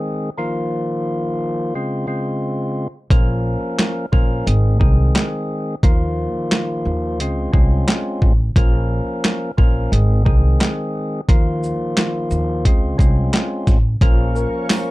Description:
hip hop, boom-bap hip-hop; 88 BPM; 4/4; swing 56% on 16ths; Bb minor; A4 = 440 Hz
percussive tonewheel organ; accompaniment; 0.0-14.9 s; Db3 to Bb4; -22 LUFS; equal; overdrive, stopped rotary speaker, cassette tape
upright bass; bass; 3.1-14.4 s; Ab1 to Eb2; -18 LUFS; equal
boom bap sampler-style drum kit; drums; 3.1-14.9 s; handclaps, hi-hat, kick drum, shaker, snare drum; -15 LUFS; equal; overdrive
warm analog pad; sustained chords; 14.0-14.9 s; Bb4 to Db6; -33 LUFS; right 1 dB; chorus
dark upright piano; melody; 14.3-14.7 s; Bb4; -26 LUFS; left 3 dB
tambourine; percussion; 14.7-14.9 s; -36 LUFS; right 5 dB
little or no reverb; dark, warm production; -16 LUFS; side -19 dB against mid
0.0-14.0 A section
0.4 Ebsus2; 1.7 Dbmaj7; 3.1 Bbm; 4.5 Ab; 5.8 Ebsus2; 7.2 Dbmaj7; 8.6 Bbm; 9.9 Ab; 11.3 Ebsus2; 12.7 Dbmaj7; 14.0 Bbm
| 0.38 1.06 1.74 2.42 | 3.10 3.79 4.47 5.15 | 5.83 6.51 7.20 7.88 | 8.56 9.24 9.92 10.61 | 11.29 11.97 12.65 13.33 | 14.01 14.70

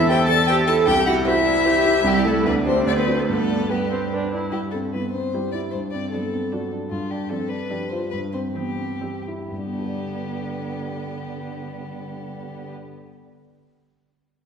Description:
quick classical-period movement for piano quartet; 120-155 BPM; 3/4; rubato; G major; A4 = 439 Hz
rich violin; melody; 0.0-12.7 s; F4 to A5; -25 LUFS; left 6 dB
warm cello; second line; 0.0-12.7 s; D3 to A4; -26 LUFS; right 6 dB
warm grand piano; accompaniment; 0.0-13.1 s; C2 to D5; -25 LUFS; equal
warm viola; accompaniment; 0.0-12.7 s; B3 to A4; -28 LUFS; right 1 dB
wet concert hall reverb, RT60 1.9 s; heard from further back in the room; -20 LUFS; side -7 dB against mid
0.0-4.5 A section; 4.5-9.5 B section; 9.5-12.3 C section
slowing down 6.3-9.5
0.0 C/E; 0.9 C; 2.1 Am/C; 2.5 G/D; 2.9 D7; 3.3 G; 4.5 C/G; 5.7 D7/G; 6.9 G7; 8.1 C/G; 9.5 G
0.10 0.49 | 0.88 1.27 1.66 | 2.05 2.46 2.87 | 3.28 3.70 4.12 | 4.53 4.93 5.33 | 5.72 6.12 6.51 | 6.90 7.29 7.70 | 8.12 8.55 9.01 | 9.50 9.97 10.44 | 10.92 11.39 11.87

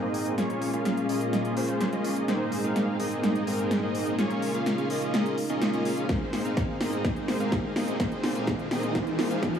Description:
EDM, festival progressive house; 126 BPM; 4/4; straight; Ab major; A4 = 436 Hz
lush unison pad; sustained chords; 0.0-9.6 s; Ab2 to Eb5; -34 LUFS; equal; chorus, sidechain pumping
dense compressed supersaw; riff; 0.0-9.6 s; Bb3 to F5; -28 LUFS; equal; sidechain pumping, low-pass filter, digital delay
big-room dance drum kit; drums; 0.1-9.6 s; hi-hat, snare drum; -30 LUFS; equal; overdrive
electronic kick drum; drums; 6.1-9.5 s; -30 LUFS; equal; overdrive
riser; sound effects; 7.3-9.6 s; -35 LUFS; right 2 dB
moderate lush hall reverb, RT60 2.0 s; high-pass filter, small room ambience; -25 LUFS; side -8 dB against mid
0.0-9.6 A section
build-up 0.0-9.6; drum fill 0.0-9.6; filter sweep on supersaw synth 0.0-9.6; filter sweep on analog synth pad 0.0-9.6; riser 7.3-9.6
0.4 Bbm7; 2.3 Abadd9; 4.2 Db6; 6.1 Abadd9; 8.0 Bb5
| 0.38 0.86 1.33 1.81 | 2.28 2.76 3.24 3.71 | 4.19 4.67 5.14 5.62 | 6.09 6.57 7.05 7.52 | 8.00 8.47 8.95 9.43

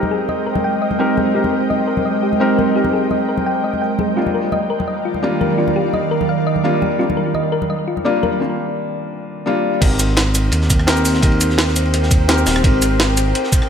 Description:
liquid drum and bass; 170 BPM; 4/4; straight; Ab lydian; A4 = 440 Hz
felt-muted upright piano; accompaniment; 0.0-13.7 s; G3 to Bb4; -20 LUFS; left 2 dB; low-pass filter, digital delay
ethereal airy pad; sustained chords; 0.0-13.7 s; Eb3 to G5; -21 LUFS; right 2 dB; ensemble chorus, built-in reverb, sidechain pumping
thumb-piano-like synth pluck; arpeggios; 0.0-8.4 s; F4 to G5; -22 LUFS; left 3 dB; chorus, digital delay
congas; percussion; 0.0-8.3 s; -25 LUFS; left 2 dB
smooth synth bass; bass; 9.8-13.3 s; Eb1 to Eb2; -17 LUFS; right 1 dB
crunchy breakbeat drum kit; drums; 9.8-13.6 s; ride cymbal, snare drum; -26 LUFS; equal; high-pass filter on cymbals, high-pass filter on snare, high-pass filter on room
electronic kick drum; drums; 9.8-13.6 s; -15 LUFS; right 1 dB
jungle sampler-style drum kit; drums; 9.8-13.7 s; cabasa, crash cymbal, hi-hat, rim click, snare drum; -19 LUFS; right 1 dB
wet recital hall reverb, RT60 1.6 s, small room ambience; -14 LUFS; side -7 dB against mid
0.0-9.8 A section; 9.8-13.7 B section
filter sweep on synth arpeggio sound 0.0-9.8; break 8.4-9.8; drop 9.8-13.7
0.0 Abmaj9; 4.2 Ebmaj9; 9.8 Abmaj9
0.29 0.64 0.99 | 1.35 1.70 2.05 2.41 | 2.76 3.11 3.46 3.82 | 4.17 4.52 4.88 5.23 | 5.58 5.94 6.29 6.64 | 7.00 7.35 7.70 8.05 | 8.41 8.76 9.11 9.46 | 9.82 10.17 10.52 10.88 | 11.23 11.58 11.94 12.29 | 12.64 12.99 13.35

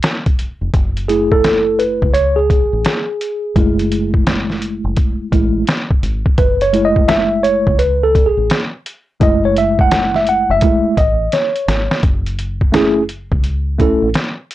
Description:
hip hop, jazz-hop; 85 BPM; 4/4; swing 64% on 16ths; F# dorian; A4 = 440 Hz
trip hop sampler-style drum kit; drums; 0.0-14.5 s; hi-hat, kick drum, snare drum; -16 LUFS; equal
deep dub fingered electric bass; bass; 0.6-14.1 s; E#1 to C#2; -20 LUFS; equal
mellow tine electric piano; accompaniment; 1.1-14.1 s; G#3 to F#5; -14 LUFS; right 1 dB; medium stereo tremolo
light reverb; dry, gritty hardware recording, transformer saturation; -13 LUFS; side -15 dB against mid
0.7-12.0 A section; 12.0-14.5 B section
tine electric piano solo 0.7-12.0; drum fill 11.3-12.0
0.0 N.C.; 0.7 F#m9; 12.0 F#m7
0.03 | 0.74 1.44 2.15 2.85 | 3.56 4.27 4.97 5.68 | 6.38 7.09 7.80 8.50 | 9.21 9.91 10.62 11.32 | 12.03 12.74 13.44 14.15

